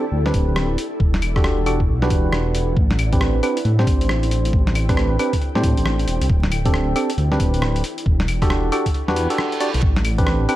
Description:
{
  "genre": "UK garage, two-step garage",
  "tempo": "136 BPM",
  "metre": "4/4",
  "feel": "swing 63% on 16ths",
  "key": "A dorian",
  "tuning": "A4 = 439 Hz",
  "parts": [
    { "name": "percussive organ stab", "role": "stabs", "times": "0.0-10.6 s", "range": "C4 to D5", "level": "-22 LUFS", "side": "right 1 dB", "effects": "chorus, digital delay" },
    { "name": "ethereal airy pad", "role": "texture", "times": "0.0-10.6 s", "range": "E4 to G5", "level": "-30 LUFS", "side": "left 1 dB", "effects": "ensemble chorus, built-in reverb, sidechain pumping" },
    { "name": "dark detuned saw bass", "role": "bass", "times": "0.1-10.5 s", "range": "D1 to A2", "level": "-20 LUFS", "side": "equal", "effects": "none" },
    { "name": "boom bap sampler-style drum kit", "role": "drums", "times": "0.3-10.6 s", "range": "claves, hi-hat, rim click, snare drum", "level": "-26 LUFS", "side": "left 1 dB", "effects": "none" },
    { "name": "electronic kick drum", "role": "drums", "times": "0.3-10.3 s", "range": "none", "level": "-19 LUFS", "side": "equal", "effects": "none" },
    { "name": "reverse cymbal", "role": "sound effects", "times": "9.1-9.8 s", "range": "none", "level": "-31 LUFS", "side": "right 4 dB", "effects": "none" }
  ],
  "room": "little or no reverb",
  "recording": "dark, warm production, vinyl crackle",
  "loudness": "-17 LUFS",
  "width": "side -14 dB against mid",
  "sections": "0.0-10.6 A section",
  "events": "filter sweep on synth stab 0.0-10.6; kick drops out 8.9-9.8; reverse cymbal 9.1-9.8",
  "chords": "0.0 D7sus4; 0.8 Em11; 2.8 Am11; 6.3 D7sus4; 7.8 Em11; 9.8 Am11",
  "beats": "0.12 0.56 | 1.00 1.44 1.88 2.33 | 2.77 3.21 3.65 4.09 | 4.53 4.97 5.41 5.86 | 6.30 6.74 7.18 7.62 | 8.06 8.50 8.94 9.38 | 9.83 10.27"
}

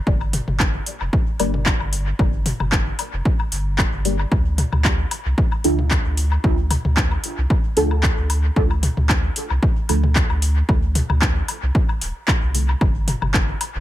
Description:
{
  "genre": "dub techno",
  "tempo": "113 BPM",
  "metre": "4/4",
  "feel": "swing 54% on 16ths",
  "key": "D minor",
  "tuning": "A4 = 437 Hz",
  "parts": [
    { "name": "warm sub bass", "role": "bass", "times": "0.1-13.8 s", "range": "D1 to D2", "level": "-21 LUFS", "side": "equal", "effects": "sidechain pumping" },
    { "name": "electronic kick drum", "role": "drums", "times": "0.1-13.5 s", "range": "none", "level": "-20 LUFS", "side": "equal", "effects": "none" },
    { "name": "electronic woodblock and toms", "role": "percussion", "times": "0.2-13.7 s", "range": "none", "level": "-29 LUFS", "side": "left 3 dB", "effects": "sidechain pumping on toms, sidechain pumping on perc, dub echo" },
    { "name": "deep house drum kit", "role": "drums", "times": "0.3-13.7 s", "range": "handclaps, hi-hat", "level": "-24 LUFS", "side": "equal", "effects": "overdrive, dub echo" },
    { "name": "deep mellow chord stab", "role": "stabs", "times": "1.4-12.7 s", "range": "D4 to D5", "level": "-24 LUFS", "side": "right 1 dB", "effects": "chorus, phaser, dub echo" }
  ],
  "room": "digital ambience",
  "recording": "echo-heavy mix",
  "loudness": "-17 LUFS",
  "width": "side -14 dB against mid",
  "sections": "0.0-13.8 A section",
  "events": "filter sweep on synth stab 0.0-13.8",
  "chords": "0.0 Gm; 4.3 Dm; 12.8 N.C.",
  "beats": "| 0.07 0.60 1.13 1.66 | 2.19 2.72 3.25 3.79 | 4.32 4.85 5.38 5.91 | 6.44 6.97 7.50 8.03 | 8.56 9.10 9.63 10.16 | 10.69 11.22 11.75 12.28 | 12.81 13.34"
}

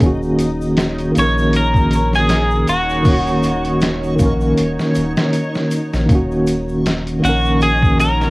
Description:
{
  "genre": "trip hop",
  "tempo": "79 BPM",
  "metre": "4/4",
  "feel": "swing 56% on 16ths",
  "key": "Eb minor",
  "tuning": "A4 = 439 Hz",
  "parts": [
    { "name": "tine electric piano", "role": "accompaniment", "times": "0.0-8.3 s", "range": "Eb3 to Bb4", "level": "-17 LUFS", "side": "equal", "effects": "tremolo, tape echo" },
    { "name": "soft dub sub bass", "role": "bass", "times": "0.0-8.3 s", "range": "Eb1 to Bb1", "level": "-21 LUFS", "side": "equal", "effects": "none" },
    { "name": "trip hop sampler-style drum kit", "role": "drums", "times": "0.0-8.3 s", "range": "hi-hat, kick drum, snare drum", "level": "-18 LUFS", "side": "equal", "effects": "overdrive, cassette tape" },
    { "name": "tube shaker", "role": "percussion", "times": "0.0-8.3 s", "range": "none", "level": "-41 LUFS", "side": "left 2 dB", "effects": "none" },
    { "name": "backwards swelling texture", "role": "texture", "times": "0.0-8.3 s", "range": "Eb4 to Db5", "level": "-28 LUFS", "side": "right 1 dB", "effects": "built-in reverb" },
    { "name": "twelve-string electric guitar", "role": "melody", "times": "1.2-8.3 s", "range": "Gb4 to Db5", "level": "-18 LUFS", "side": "equal", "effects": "vibrato effect, cassette tape, tape echo" }
  ],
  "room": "little or no reverb",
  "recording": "home recording on cassette, vinyl crackle",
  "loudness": "-14 LUFS",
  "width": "side -23 dB against mid",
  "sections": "0.0-8.3 A section",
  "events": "none",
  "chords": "0.0 Ebm7",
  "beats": "| 0.02 0.78 1.53 2.29 | 3.05 3.81 4.57 5.33 | 6.09 6.85 7.61"
}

